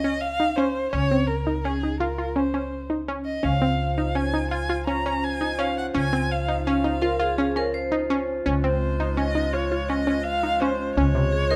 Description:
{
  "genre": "contemporary instrumental, chamber music in an uneven meter",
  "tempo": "167 BPM",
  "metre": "7/4",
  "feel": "straight",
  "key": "Db major",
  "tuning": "A4 = 440 Hz",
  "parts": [
    { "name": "dark violin", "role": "melody", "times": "0.0-11.6 s", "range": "Ab4 to Bb5", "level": "-30 LUFS", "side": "equal", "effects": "none" },
    { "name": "analog pluck", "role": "arpeggios", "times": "0.0-11.6 s", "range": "C3 to F4", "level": "-28 LUFS", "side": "equal", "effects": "chorus" },
    { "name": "upright bass", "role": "bass", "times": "0.0-11.6 s", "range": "Db2", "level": "-30 LUFS", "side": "equal", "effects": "none" },
    { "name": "mellow woodwind section", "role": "sustained chords", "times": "3.4-11.6 s", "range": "F3 to C5", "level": "-35 LUFS", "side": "equal", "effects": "none" },
    { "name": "vibraphone with hard mallets", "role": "second line", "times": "7.0-11.6 s", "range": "Ab4 to C5", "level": "-30 LUFS", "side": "equal", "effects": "none" }
  ],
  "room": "light reverb",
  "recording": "close, detailed microphones",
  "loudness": "-24 LUFS",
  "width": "mono",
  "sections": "0.0-11.6 A section",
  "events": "none",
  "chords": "0.0 Dbmaj7"
}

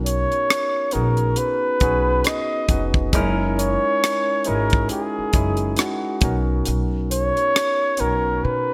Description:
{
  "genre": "R&B, neo-soul",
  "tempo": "68 BPM",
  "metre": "4/4",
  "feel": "swing 59% on 16ths",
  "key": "B major",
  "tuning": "A4 = 444 Hz",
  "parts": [
    { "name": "barky tine electric piano", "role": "accompaniment", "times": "0.0-8.7 s", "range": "G#3 to B4", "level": "-28 LUFS", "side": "equal", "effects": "none" },
    { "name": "upright bass", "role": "bass", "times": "0.0-8.7 s", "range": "E#1 to B2", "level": "-26 LUFS", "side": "equal", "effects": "none" },
    { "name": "mellow flugelhorn", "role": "melody", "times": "0.1-8.7 s", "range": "F#4 to D#5", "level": "-24 LUFS", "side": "equal", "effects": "none" },
    { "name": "tight funk drum kit", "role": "drums", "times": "0.1-8.2 s", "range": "hi-hat, kick drum, rim click", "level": "-24 LUFS", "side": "equal", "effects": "none" }
  ],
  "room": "light reverb, studio reverb",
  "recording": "bright 1980s-style digital production",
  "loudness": "-21 LUFS",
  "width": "mono",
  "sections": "0.0-8.7 A section",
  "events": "none",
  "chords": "0.0 Bmaj9; 3.1 F#13; 6.2 Bmaj9"
}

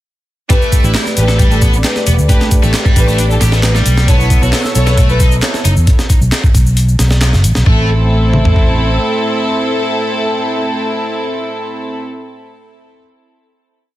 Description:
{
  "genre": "breakbeat, breaks",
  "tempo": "134 BPM",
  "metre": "4/4",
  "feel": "straight",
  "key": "A minor",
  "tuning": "A4 = 439 Hz",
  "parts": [
    { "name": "dark analog pad", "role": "sustained chords", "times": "0.5-12.0 s", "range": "A3 to E6", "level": "-22 LUFS", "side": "left 1 dB", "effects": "chorus, vintage 12-bit sampler grit, sidechain pumping" },
    { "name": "heavy high-gain guitar", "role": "riff", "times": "0.5-7.9 s", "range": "G3 to B4", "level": "-21 LUFS", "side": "equal", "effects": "distortion, tube saturation, digital delay" },
    { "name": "warm studio string section", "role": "stabs", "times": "0.5-12.0 s", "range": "A3 to C#5", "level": "-18 LUFS", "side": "right 1 dB", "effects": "vintage 12-bit sampler grit, digital delay" },
    { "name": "breakbeat sampler-style drum kit", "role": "drums", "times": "0.5-8.7 s", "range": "hi-hat, kick drum, snare drum, toms", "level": "-12 LUFS", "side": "equal", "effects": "none" },
    { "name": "electronic shaker and handclaps", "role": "drums", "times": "0.5-7.6 s", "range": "none", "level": "-23 LUFS", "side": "left 1 dB", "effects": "none" },
    { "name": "fingered electric bass", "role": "bass", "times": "0.8-9.0 s", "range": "E1 to E2", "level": "-12 LUFS", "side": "equal", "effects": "none" }
  ],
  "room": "digital ambience",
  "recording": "dense, heavily limited modern master",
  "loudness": "-10 LUFS",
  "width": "side -15 dB against mid",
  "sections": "0.5-7.7 drop; 7.7-11.2 final chord",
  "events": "drop 0.5-7.7",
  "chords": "0.5 A9sus4; 4.1 B9sus4; 7.7 Am"
}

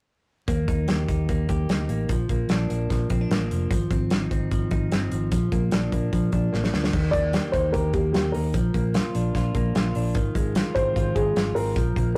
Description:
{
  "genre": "jangly indie pop",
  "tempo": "149 BPM",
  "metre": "4/4",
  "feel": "straight",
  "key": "unclear",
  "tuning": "A4 = 440 Hz",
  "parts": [
    { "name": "direct-recorded clean electric guitar", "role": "arpeggios", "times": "0.5-12.2 s", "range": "Eb3 to G4", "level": "-32 LUFS", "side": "equal", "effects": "none" },
    { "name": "vintage muted fingered electric bass", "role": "bass", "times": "0.5-12.2 s", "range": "F1 to Eb2", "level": "-28 LUFS", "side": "equal", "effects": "none" },
    { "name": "modern studio drum kit", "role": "drums", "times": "0.5-12.1 s", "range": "crash cymbal, hi-hat, kick drum, snare drum", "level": "-28 LUFS", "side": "equal", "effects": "none" },
    { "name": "dark upright piano", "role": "melody", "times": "7.1-12.2 s", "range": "G4 to D5", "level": "-28 LUFS", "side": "equal", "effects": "none" }
  ],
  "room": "moderate studio reverb, RT60 0.5 s",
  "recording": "rough rehearsal-room recording, warm saturation, vinyl crackle",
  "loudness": "-24 LUFS",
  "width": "mono",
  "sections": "0.5-6.9 A section; 6.9-12.2 B section",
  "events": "drum fill 6.5-6.9",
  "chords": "0.5 Eb; 2.1 Bb; 3.7 Ab6; 5.3 Bb; 6.9 Eb; 8.5 Bb; 10.2 Ab6"
}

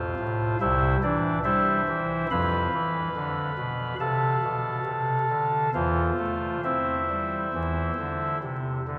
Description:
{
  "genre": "classical, chorale-style piece for pipe organ",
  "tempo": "67-72 BPM",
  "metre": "4/4",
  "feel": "rubato",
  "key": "unclear",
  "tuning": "A4 = 439 Hz",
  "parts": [
    { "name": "chamber organ, soft reed", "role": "solo", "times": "0.0-9.0 s", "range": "C2 to B5", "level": "-26 LUFS", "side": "equal", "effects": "none" }
  ],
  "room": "wet cathedral reverb, RT60 6.1 s",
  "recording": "heard from further back in the room, vinyl crackle",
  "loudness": "-26 LUFS",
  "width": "mono",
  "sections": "0.0-9.0 A section",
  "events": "none",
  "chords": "0.0 F; 0.6 C; 2.3 F; 5.7 Am/E; 7.5 Cadd9/E"
}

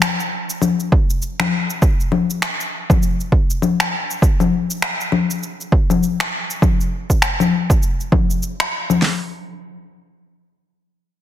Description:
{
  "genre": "organic downtempo",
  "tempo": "100 BPM",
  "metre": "4/4",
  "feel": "swing 59% on 16ths",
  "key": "none",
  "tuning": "none",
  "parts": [
    { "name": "electronic finger snaps, shaker and congas", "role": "drums", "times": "0.0-9.0 s", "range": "none", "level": "-19 LUFS", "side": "left 4 dB", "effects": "overdrive, soft clipping on snare" },
    { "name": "deep house drum kit", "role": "drums", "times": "0.9-9.2 s", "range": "hi-hat, kick drum, snare drum", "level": "-16 LUFS", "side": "right 1 dB", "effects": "overdrive" }
  ],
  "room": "light reverb",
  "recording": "dense, heavily limited modern master",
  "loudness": "-16 LUFS",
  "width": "side -11 dB against mid",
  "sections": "0.0-9.0 A section; 9.0-11.2 B section",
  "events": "none",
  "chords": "none"
}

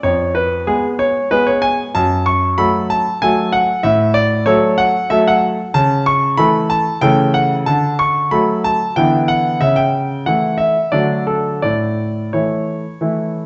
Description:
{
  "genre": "classical-period piano sonatina",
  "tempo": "93 BPM",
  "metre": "3/4",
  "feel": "rubato",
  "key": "F# minor",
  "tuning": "A4 = 437 Hz",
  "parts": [
    { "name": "bright concert grand piano", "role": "solo", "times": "0.0-13.5 s", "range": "F2 to C#6", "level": "-16 LUFS", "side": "equal", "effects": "none" }
  ],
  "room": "wet recital hall reverb, RT60 1.5 s",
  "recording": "nothing above 7.7 kHz",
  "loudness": "-16 LUFS",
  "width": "mono",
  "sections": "0.0-13.5 A section",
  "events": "none",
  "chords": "0.0 Fdim; 2.0 F#m; 3.8 F#m/A; 5.7 A/C#; 7.7 D; 9.0 Em7/D; 9.6 A/C#; 10.9 D; 11.6 A"
}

